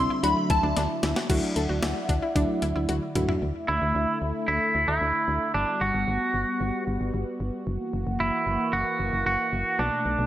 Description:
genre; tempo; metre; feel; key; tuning
synth-pop; 113 BPM; 4/4; straight; D major; A4 = 440 Hz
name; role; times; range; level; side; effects
shimmering bell with halo; second line; 0.0-0.6 s; A5 to B5; -27 LUFS; left 2 dB; ensemble chorus, tape echo
mellow FM electric piano; accompaniment; 0.0-3.4 s; F#3 to F#4; -29 LUFS; right 1 dB; chorus
sweeping resonant pad; sustained chords; 0.0-10.3 s; B2 to F#5; -31 LUFS; equal; chorus, phaser
analog pluck; arpeggios; 0.0-3.4 s; D4 to A4; -33 LUFS; left 2 dB; chorus, tape echo
solid FM bass; bass; 0.0-10.3 s; F#1 to D2; -29 LUFS; equal; none
clean 12-bit digital drum machine; drums; 0.2-3.4 s; crash cymbal, hi-hat, kick drum, snare drum, toms; -29 LUFS; equal; none
twangy electric guitar; melody; 3.7-10.3 s; D4 to F#4; -25 LUFS; right 2 dB; spring reverb
room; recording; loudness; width
light reverb, digital ambience; none; -23 LUFS; side -12 dB against mid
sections
0.0-1.3 A section; 1.3-3.4 B section; 3.4-10.3 C section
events
drum fill 0.8-1.3, 2.9-3.4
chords
0.2 Dadd9; 3.4 Dsus2; 5.5 Gmaj7; 7.7 F#7

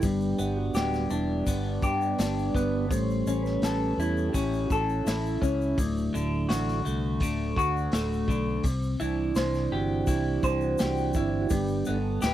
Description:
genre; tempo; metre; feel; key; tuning
psychedelic rock; 84 BPM; 4/4; straight; D mixolydian; A4 = 440 Hz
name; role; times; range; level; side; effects
mellow tonewheel organ; sustained chords; 0.0-12.3 s; E3 to C5; -31 LUFS; right 4 dB; slow rotary speaker
electric guitar through a small old amp; riff; 0.0-12.3 s; D2 to C5; -28 LUFS; left 1 dB; phaser
fingered electric bass; bass; 0.0-12.3 s; D1 to G2; -31 LUFS; equal; none
crunchy breakbeat drum kit; drums; 0.0-12.3 s; hi-hat, kick drum, snare drum; -31 LUFS; equal; none
egg shaker; percussion; 0.0-12.3 s; none; -46 LUFS; left 12 dB; none
room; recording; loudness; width
small room ambience; dry, close 1970s-style studio recording; -25 LUFS; side -12 dB against mid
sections
0.0-12.3 A section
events
tonewheel organ solo 0.0-12.3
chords
0.0 G; 2.9 A7; 5.8 D; 8.6 Cadd9; 11.5 G

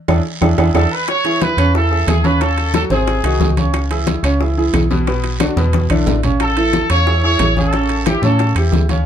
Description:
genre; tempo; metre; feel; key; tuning
latin, salsa; 180 BPM; 4/4; straight; A major; A4 = 444 Hz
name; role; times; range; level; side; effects
bright upright piano; accompaniment; 0.1-9.1 s; B2 to C#5; -19 LUFS; right 2 dB; none
metallic FM bass; bass; 0.1-9.1 s; G#1 to A2; -17 LUFS; equal; none
bongos; percussion; 0.1-9.1 s; none; -25 LUFS; left 7 dB; none
claves; percussion; 0.1-8.7 s; none; -32 LUFS; left 6 dB; none
congas; percussion; 0.1-9.1 s; none; -21 LUFS; left 2 dB; none
guiro; percussion; 0.1-9.1 s; none; -32 LUFS; right 5 dB; none
timbales; percussion; 0.1-9.1 s; none; -25 LUFS; right 9 dB; none
bright trumpet section; melody; 0.8-3.5, 6.4-8.5 s; G4 to C#5; -18 LUFS; right 1 dB; none
room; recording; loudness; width
moderate studio ambience, RT60 0.5 s; dark, warm production; -13 LUFS; side -9 dB against mid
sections
0.0-1.1 A section; 1.1-9.1 A section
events
band accent 0.0-1.1; drum fill 0.4-1.1, 5.7-6.4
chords
0.0 E7; 1.1 Amaj7; 2.4 D#m7b5; 3.1 G#7; 3.7 C#m7; 5.1 Bm; 5.7 E5; 6.4 Amaj7; 7.7 A7

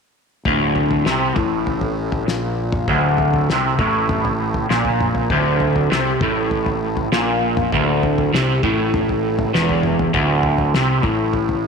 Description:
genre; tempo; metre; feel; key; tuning
psychedelic rock; 99 BPM; 4/4; straight; unclear; A4 = 439 Hz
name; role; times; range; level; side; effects
crunchy overdriven guitar; riff; 0.5-11.7 s; D2 to C3; -17 LUFS; equal; phaser
fuzz fingered electric bass; bass; 0.5-11.7 s; D1 to C2; -26 LUFS; right 1 dB; overdrive
cloth-damped thuddy drum kit; drums; 0.5-11.6 s; kick drum, snare drum, toms; -25 LUFS; left 2 dB; none
room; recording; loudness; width
moderate echo chamber reverb, RT60 2.3 s; 1960s-style stereo; -16 LUFS; side -5 dB against mid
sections
0.5-11.7 A section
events
none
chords
0.5 D5

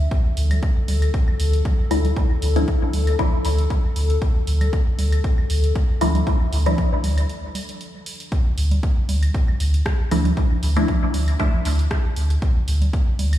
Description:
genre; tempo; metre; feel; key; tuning
dub techno; 117 BPM; 4/4; swing 54% on 16ths; D minor; A4 = 439 Hz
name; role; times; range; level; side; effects
dark analog pad; sustained chords; 0.0-8.3 s; F3 to E5; -30 LUFS; left 6 dB; chorus, sidechain pumping
filtered dub chord stab; stabs; 0.0-13.4 s; F3 to E4; -24 LUFS; left 1 dB; phaser, sidechain pumping, dub echo
warm sub bass; bass; 0.0-13.4 s; D2; -18 LUFS; equal; sidechain pumping
electronic kick drum; drums; 0.1-13.0 s; none; -20 LUFS; equal; none
punchy analog drum machine; drums; 0.1-13.4 s; hi-hat, rim click; -34 LUFS; right 2 dB; dub echo
congas and claves; percussion; 0.5-13.4 s; none; -34 LUFS; right 2 dB; sidechain pumping on perc, dub echo
room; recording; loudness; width
little or no reverb; played on a big sound system in a bare room, stone room reverb; -18 LUFS; side -13 dB against mid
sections
0.0-8.3 A section; 8.3-13.4 A section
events
filter sweep on synth stab 0.0-8.3; break 7.3-8.3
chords
0.0 Dmadd9

